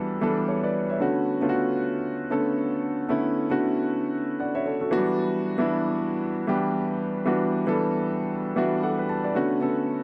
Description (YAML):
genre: amapiano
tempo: 115 BPM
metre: 4/4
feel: swing 58% on 16ths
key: B minor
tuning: A4 = 440 Hz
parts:
  - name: warm grand piano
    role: solo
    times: 0.0-10.0 s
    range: D3 to A5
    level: -26 LUFS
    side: equal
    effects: digital delay
room: light reverb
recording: none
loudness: -26 LUFS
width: mono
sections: 0.0-9.3 A section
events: grand piano fill 8.3-9.3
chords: 0.0 Em9; 1.0 Bm9; 4.9 Em9; 9.3 Bm9